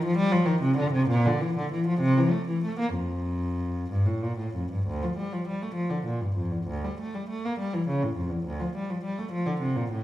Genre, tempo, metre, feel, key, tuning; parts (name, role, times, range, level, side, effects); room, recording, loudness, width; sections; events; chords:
classical, baroque-style suite movement for unaccompanied cello; 62-71 BPM (dotted quarters); 6/8; rubato; F major, D minor from 4.9 s; A4 = 445 Hz
rich cello; solo; 0.0-10.0 s; D2 to Bb3; -25 LUFS; equal
wet recital hall reverb, RT60 1.3 s; -25 LUFS; side -14 dB against mid
0.0-4.9 A section; 4.9-10.0 A section